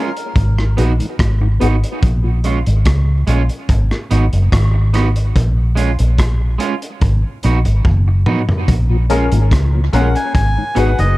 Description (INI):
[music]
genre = dub reggae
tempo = 72 BPM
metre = 4/4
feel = straight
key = Bb phrygian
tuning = A4 = 441 Hz
[part]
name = melodica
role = melody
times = 0.0-0.1, 9.9-11.2 s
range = Bb4 to Ab5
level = -22 LUFS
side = equal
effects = tape echo
[part]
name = electric guitar at the edge of break-up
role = accompaniment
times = 0.0-11.0 s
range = Ab3 to Gb4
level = -23 LUFS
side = right 5 dB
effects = tape echo
[part]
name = mellow tonewheel organ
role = accompaniment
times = 0.0-2.3, 8.9-11.1 s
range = Ab2 to Ab4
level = -25 LUFS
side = left 3 dB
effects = chorus vibrato, slow rotary speaker, tape echo
[part]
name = crunchy breakbeat drum kit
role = drums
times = 0.2-11.2 s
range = hi-hat, kick drum, rim click, toms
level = -18 LUFS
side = equal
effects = none
[part]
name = vintage muted fingered electric bass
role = bass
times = 0.4-11.2 s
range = Gb1 to Db2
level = -14 LUFS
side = equal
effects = none
[part]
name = clear upright piano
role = stabs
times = 9.1-11.1 s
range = Db4 to Cb5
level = -21 LUFS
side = left 6 dB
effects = tape echo
[sound]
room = little or no reverb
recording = dark, warm production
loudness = -12 LUFS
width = side -19 dB against mid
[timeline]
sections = 0.0-11.2 A section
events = break 0.0-8.7; drum fill 7.8-8.7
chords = 0.4 Abm7; 2.0 Bbm7; 3.7 Abm7; 5.4 Bbm7; 7.0 Abm7; 8.7 Bbm7; 10.3 Abm7